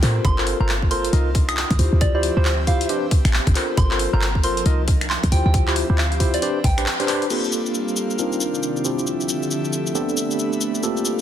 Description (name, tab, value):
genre	UK garage, two-step garage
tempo	136 BPM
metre	4/4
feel	swing 62% on 16ths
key	G minor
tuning	A4 = 440 Hz
part	soft synth bell	melody	0.0-7.1 s	C5 to Eb6	-28 LUFS	right 2 dB	chorus, digital delay
part	airy breathy pad	sustained chords	0.0-11.2 s	C3 to F5	-31 LUFS	right 1 dB	chorus, sidechain pumping
part	tine electric piano	stabs	0.0-11.2 s	Bb3 to Eb5	-24 LUFS	equal	fast stereo tremolo, low-pass filter, digital delay
part	short 808-style bass	bass	0.0-6.9 s	G1 to A2	-20 LUFS	equal	none
part	punchy analog drum machine	drums	0.0-11.2 s	crash cymbal, finger snaps, handclaps, hi-hat, shaker	-26 LUFS	left 2 dB	none
part	electronic kick drum	drums	0.2-6.8 s	none	-19 LUFS	equal	none
part	deep dark ambient pad	texture	8.0-11.2 s	D4 to A4	-30 LUFS	right 3 dB	chorus, built-in reverb, sidechain pumping
room	light reverb, digital ambience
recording	dense, heavily limited modern master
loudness	-18 LUFS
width	side -10 dB against mid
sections	0.0-7.3 A section; 7.3-11.2 B section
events	band accent 6.9; filter sweep on tine electric piano 7.3-11.2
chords	0.2 Gm11; 1.1 Cm11; 1.8 Dm11; 2.9 Am11; 3.8 Gm11; 4.7 Cm11; 5.3 Dm11; 6.4 Am11; 7.3 Gm11; 8.2 Cm11; 8.8 Dm11; 10.0 Am11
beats	| 0.25 0.69 1.13 1.57 | 2.01 2.45 2.89 3.33 | 3.78 4.22 4.66 5.10 | 5.54 5.98 6.42 6.87 | 7.31 7.75 8.19 8.63 | 9.07 9.51 9.95 10.39 | 10.84